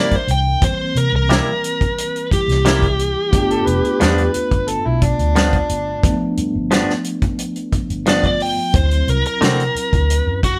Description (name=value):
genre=straight-eighth soul blues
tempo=89 BPM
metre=4/4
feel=straight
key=G mixolydian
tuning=A4 = 442 Hz
part: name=smooth overdriven lead guitar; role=melody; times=0.0-10.6 s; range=F#4 to G5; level=-22 LUFS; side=equal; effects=none
part: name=tine electric piano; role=accompaniment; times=0.0-10.6 s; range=E3 to Bb4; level=-27 LUFS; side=equal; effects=none
part: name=direct-recorded clean electric guitar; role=stabs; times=0.0-9.6 s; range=G2 to F#4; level=-21 LUFS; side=equal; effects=none
part: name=vintage muted fingered electric bass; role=bass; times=0.0-10.5 s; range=F1 to C3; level=-22 LUFS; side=equal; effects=none
part: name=warm soul drum kit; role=drums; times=0.1-10.6 s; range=hi-hat, kick drum, snare drum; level=-21 LUFS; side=equal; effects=none
part: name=overdriven harmonica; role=second line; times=3.3-6.3 s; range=D4 to B4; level=-24 LUFS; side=equal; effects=none
room=moderate studio reverb, RT60 0.6 s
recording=band playing live in one room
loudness=-17 LUFS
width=mono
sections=0.0-10.6 A section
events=none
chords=0.0 C7; 3.3 G7; 8.7 D7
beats=| 0.62 1.30 1.97 2.65 | 3.33 4.00 4.68 5.36 | 6.04 6.71 7.39 8.06 | 8.74 9.41 10.09